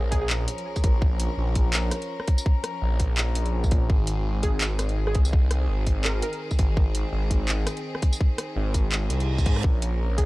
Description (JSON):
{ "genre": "half-time drum and bass", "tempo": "167 BPM", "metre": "4/4", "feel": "swing 57% on 16ths, half-time", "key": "unclear", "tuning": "A4 = 440 Hz", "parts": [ { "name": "glassy wavetable pluck", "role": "melody", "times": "0.0-0.3, 4.4-6.6, 10.2-10.3 s", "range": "Ab4 to Bb4", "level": "-34 LUFS", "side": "right 1 dB", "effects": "chorus, analog delay" }, { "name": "rich chamber string section", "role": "sustained chords", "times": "0.0-10.3 s", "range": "Eb3 to Bb4", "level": "-34 LUFS", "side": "left 1 dB", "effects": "sidechain pumping" }, { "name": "phased detuned saw bass", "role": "bass", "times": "0.0-10.3 s", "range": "Ab1 to Ab2", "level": "-25 LUFS", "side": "equal", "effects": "phaser" }, { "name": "drum and bass drum kit", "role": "drums", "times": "0.1-10.3 s", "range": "handclaps, hi-hat, rim click, tambourine", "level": "-29 LUFS", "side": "equal", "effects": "none" }, { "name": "electronic kick drum", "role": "drums", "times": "0.1-10.3 s", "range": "none", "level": "-21 LUFS", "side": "equal", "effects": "none" }, { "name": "reverse cymbal", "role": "sound effects", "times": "9.1-9.6 s", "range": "none", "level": "-38 LUFS", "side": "right 6 dB", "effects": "none" } ], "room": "digital ambience", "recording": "dry, gritty hardware recording, cassette tape", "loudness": "-22 LUFS", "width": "side -20 dB against mid", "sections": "0.0-10.3 A section", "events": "reverse cymbal 9.1-9.6", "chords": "0.0 Bbm; 3.9 Ab; 9.6 Bbm" }